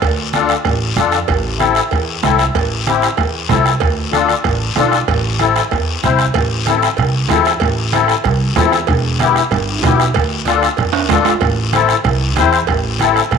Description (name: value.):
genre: latin, cumbia.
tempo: 189 BPM.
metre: 4/4.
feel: straight.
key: A minor.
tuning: A4 = 440 Hz.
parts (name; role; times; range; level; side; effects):
upright bass; bass; 0.0-13.4 s; E1 to F2; -19 LUFS; right 2 dB; none.
bombo; percussion; 0.0-13.4 s; none; -19 LUFS; right 4 dB; none.
congas; percussion; 0.0-13.4 s; none; -24 LUFS; right 1 dB; none.
cowbell and timbales; percussion; 0.0-13.4 s; none; -22 LUFS; right 13 dB; none.
guiro; percussion; 0.0-13.4 s; none; -25 LUFS; left 10 dB; none.
musette accordion; accompaniment; 0.3-13.2 s; B3 to C5; -16 LUFS; left 9 dB; none.
room: moderate echo chamber reverb, RT60 1.8 s, small room ambience.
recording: 1960s-style stereo with parts hard left and right.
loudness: -12 LUFS.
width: side -6 dB against mid.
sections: 0.0-6.3 A section; 6.3-13.4 B section.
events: drum fill 10.9-11.4.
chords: 0.0 Dm; 1.3 Am; 3.8 Dm; 5.1 Am; 8.9 Em; 10.2 Dm; 11.4 Am.